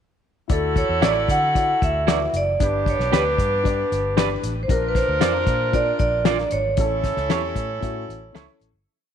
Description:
uptempo 1960s-style soul; 115 BPM; 4/4; straight; D major; A4 = 440 Hz
vibraphone with medium hard mallets; melody; 0.5-8.6 s; A4 to F#5; -23 LUFS; right 1 dB
warm horn section; second line; 0.5-8.6 s; B3 to Bb4; -28 LUFS; right 2 dB
dark upright piano; accompaniment; 0.5-8.7 s; C#4 to D5; -30 LUFS; left 12 dB
vintage muted fingered electric bass; bass; 0.5-8.8 s; F#1 to D3; -27 LUFS; equal
cloth-damped thuddy drum kit; drums; 0.5-8.7 s; hi-hat, kick drum, snare drum; -24 LUFS; left 2 dB
electric guitar through a small old amp; stabs; 1.0-8.5 s; E4 to D5; -27 LUFS; right 13 dB
light reverb, small room ambience; 1960s-style stereo with parts hard left and right; -18 LUFS; side -8 dB against mid
0.5-8.9 verse
fade-out 6.8-8.9
0.5 Dadd9; 2.6 G; 4.7 Bb; 6.8 A

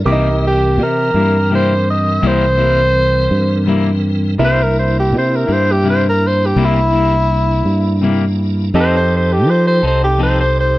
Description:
blues; 55 BPM (dotted quarters); 12/8; straight; C mixolydian; A4 = 439 Hz
bright grand piano; accompaniment; 0.0-10.8 s; E4 to D6; -25 LUFS; right 2 dB
tonewheel organ; sustained chords; 0.0-10.8 s; E3 to Bb4; -24 LUFS; equal; slow rotary speaker, chorus vibrato
warm tenor saxophone; melody; 0.1-10.8 s; Eb4 to Eb5; -16 LUFS; equal
clean electric guitar; accompaniment; 0.1-10.4 s; C3 to A4; -21 LUFS; left 4 dB; harmonic tremolo
fingered electric bass; bass; 0.1-10.8 s; C2 to F3; -15 LUFS; equal
light reverb, studio ambience; dark, warm production; -12 LUFS; side -17 dB against mid
0.0-10.8 A section
0.0 C7; 8.7 F7

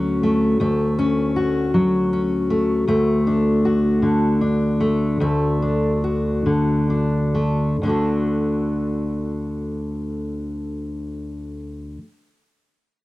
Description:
folk; 42-53 BPM (dotted quarters); 6/8; straight; D major; A4 = 440 Hz
fingerpicked steel-string acoustic guitar; accompaniment; 0.0-12.0 s; D2 to F#4; -18 LUFS; left 1 dB; cassette tape
light reverb; home recording on cassette; -18 LUFS; side -18 dB against mid
0.0-7.8 A section; 7.8-10.7 B section
slowing down 2.9-7.8
0.0 F#m/D; 2.9 D

